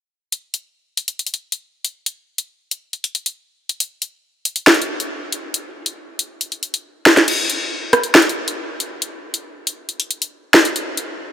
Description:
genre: hip hop.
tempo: 138 BPM.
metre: 4/4.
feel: half-time.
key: none.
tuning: none.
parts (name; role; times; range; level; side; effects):
drill drum kit; drums; 0.3-11.1 s; crash cymbal, hi-hat, rim click, snare drum; -15 LUFS; equal; none.
room: moderate huge ambient reverb, RT60 4.5 s.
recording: none.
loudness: -17 LUFS.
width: side -10 dB against mid.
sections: 0.3-7.3 A section; 7.3-11.3 B section.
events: kick muted 5.5-7.3, 7.3-11.3.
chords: none.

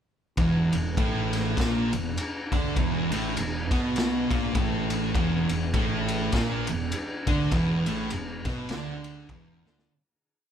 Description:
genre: stoner and doom metal.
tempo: 101 BPM.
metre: 4/4.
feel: swing 59% on 8ths.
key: unclear.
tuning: A4 = 440 Hz.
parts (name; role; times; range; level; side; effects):
thick fuzz guitar; riff; 0.4-9.9 s; E2 to D4; -30 LUFS; left 7 dB; distortion.
thick fuzz guitar; riff; 0.4-9.9 s; E2 to D4; -28 LUFS; right 6 dB; distortion.
fuzz fingered electric bass; bass; 0.4-9.9 s; E1 to D2; -35 LUFS; left 1 dB; overdrive.
raw garage drum kit; drums; 0.4-9.9 s; kick drum, ride cymbal, snare drum; -29 LUFS; left 1 dB; none.
room: light reverb.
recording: band playing live in one room.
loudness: -24 LUFS.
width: side -9 dB against mid.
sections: 0.4-9.9 riff.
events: fade-out 7.5-9.9; drum fill 9.6.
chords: 0.4 E5.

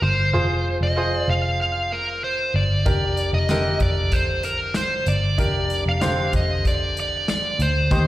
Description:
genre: piano-driven pop.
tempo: 95 BPM.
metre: 4/4.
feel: straight.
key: unclear.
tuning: A4 = 440 Hz.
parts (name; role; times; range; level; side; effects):
dark smooth lead guitar; melody; 0.0-8.1 s; Bb4 to F5; -23 LUFS; right 1 dB; overdrive, slapback echo, digital delay.
bright baby grand piano; accompaniment; 0.0-8.1 s; D3 to C5; -27 LUFS; equal; none.
vintage muted picked electric bass; bass; 0.0-8.1 s; F1 to Eb2; -23 LUFS; equal; none.
natural country drum kit; drums; 2.9-8.1 s; hi-hat, kick drum, snare drum; -24 LUFS; equal; none.
room: light reverb.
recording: live gig heard through the venue's PA, recital hall reverb.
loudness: -19 LUFS.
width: side -15 dB against mid.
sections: 0.0-8.1 A section.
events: none.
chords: 0.0 Fm; 2.9 Bb6/F.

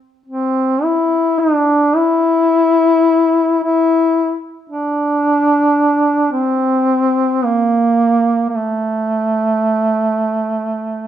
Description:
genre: caucasian folk, Caucasian lament.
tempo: free time.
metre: none.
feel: none.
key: A phrygian.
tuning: A4 = 440 Hz.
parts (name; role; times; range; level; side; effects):
mellow duduk; solo; 0.3-11.1 s; A3 to E4; -13 LUFS; equal; none.
room: moderate recital hall reverb, RT60 1.5 s.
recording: dark, warm production.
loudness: -13 LUFS.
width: side -10 dB against mid.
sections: 0.0-11.1 A section.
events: none.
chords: none.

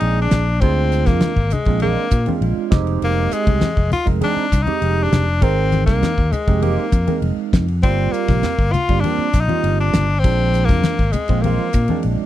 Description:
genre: electric jazz fusion.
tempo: 100 BPM.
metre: 4/4.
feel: straight.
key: Bb mixolydian.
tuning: A4 = 440 Hz.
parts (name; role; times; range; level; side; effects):
edgy tenor saxophone; melody; 0.0-12.0 s; Ab3 to F4; -22 LUFS; left 3 dB; none.
barky tine electric piano; accompaniment; 0.0-12.3 s; F3 to D5; -23 LUFS; right 12 dB; overdrive, phaser.
fingered electric bass; bass; 0.0-12.2 s; F1 to Bb2; -19 LUFS; equal; none.
damped 70s drum kit; drums; 0.0-12.2 s; hi-hat, kick drum, ride cymbal, snare drum; -18 LUFS; equal; none.
congas; percussion; 0.3-12.0 s; none; -25 LUFS; left 4 dB; none.
room: little or no reverb.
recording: dry, close 1970s-style studio recording.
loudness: -15 LUFS.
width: side -13 dB against mid.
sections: 0.0-12.3 A section.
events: none.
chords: 0.0 Bb7; 2.7 Fm7; 7.8 Ebmaj13/G (rootless); 10.2 Bb7.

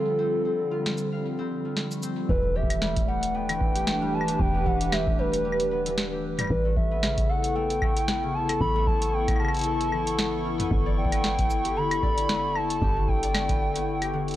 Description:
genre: IDM.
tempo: 114 BPM.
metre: 4/4.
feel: swing 56% on 16ths.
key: E dorian.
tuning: A4 = 437 Hz.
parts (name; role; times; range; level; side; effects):
warbly nostalgic lead; melody; 0.0-14.4 s; A4 to B5; -28 LUFS; equal; chorus.
hollow soft pad; sustained chords; 0.0-14.4 s; D3 to C#6; -31 LUFS; equal; chorus, vintage 12-bit sampler grit.
concert harp; arpeggios; 0.0-14.4 s; C#3 to F5; -32 LUFS; left 4 dB; analog delay.
flickering grainy texture; texture; 0.0-2.3 s; G3 to B5; -49 LUFS; right 1 dB; none.
electro analog drum machine; drums; 0.9-14.4 s; claves, hi-hat, shaker, snare drum, toms; -30 LUFS; equal; none.
woody FM bass; bass; 2.3-14.4 s; E1 to A1; -31 LUFS; equal; none.
electronic kick drum; drums; 2.3-13.6 s; none; -28 LUFS; equal; none.
room: digital ambience.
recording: dry, gritty hardware recording.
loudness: -23 LUFS.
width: side -14 dB against mid.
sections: 0.0-2.3 A section; 2.3-14.4 B section.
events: filter sweep 0.0-2.3.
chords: 0.0 F; 2.3 Em; 6.5 Aadd9; 10.7 G.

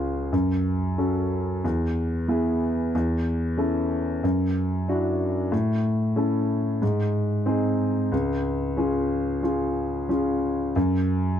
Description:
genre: folk.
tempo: 92 BPM.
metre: 4/4.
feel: straight.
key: unclear.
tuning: A4 = 440 Hz.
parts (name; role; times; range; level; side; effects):
warm grand piano; solo; 0.0-11.4 s; C#2 to A4; -22 LUFS; equal; none.
room: light reverb.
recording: dark, warm production.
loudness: -22 LUFS.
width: side -9 dB against mid.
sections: 0.0-10.8 A section.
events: none.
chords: 0.3 F#m; 1.6 E; 2.9 A/E; 4.2 Dadd9/F#; 5.5 A; 6.8 G#; 8.1 C#; 10.8 N.C..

